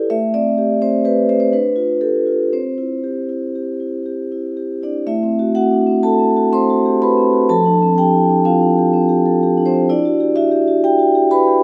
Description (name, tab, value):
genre	classical, contemporary piece for solo vibraphone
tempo	115-130 BPM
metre	5/4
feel	rubato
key	C major, A minor from 5.1 s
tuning	A4 = 443 Hz
part	vibraphone with soft mallets	solo	0.0-11.6 s	F3 to C6	-16 LUFS	equal	none
room	moderate scoring stage reverb, RT60 2.0 s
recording	dark, warm production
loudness	-16 LUFS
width	mono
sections	0.0-5.1 A section; 5.1-11.6 B section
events	none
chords	0.1 Am7; 1.5 Dmadd11; 2.5 C; 5.1 Am6; 7.5 F69; 9.9 Em9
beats	| 0.11 0.58 1.05 1.52 2.01 | 2.52 3.04 3.55 4.06 4.57 | 5.07 5.56 6.04 6.52 7.01 | 7.49 7.97 8.45 8.93 9.40 | 9.88 10.35 10.82 11.30